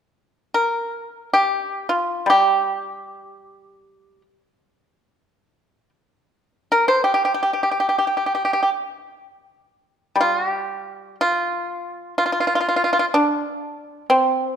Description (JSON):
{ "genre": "chinese traditional, Chinese solo plucked strings", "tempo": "free time", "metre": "none", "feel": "none", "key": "G yu mode", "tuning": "A4 = 441 Hz", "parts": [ { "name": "pipa", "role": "solo", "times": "0.5-14.6 s", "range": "G3 to C5", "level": "-18 LUFS", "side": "equal", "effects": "none" } ], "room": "moderate scoring stage reverb, RT60 1.6 s", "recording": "minimal, uncompressed stereo recording", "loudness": "-18 LUFS", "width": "side -8 dB against mid", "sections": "0.0-9.2 A section; 9.2-14.6 B section", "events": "none", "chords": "none" }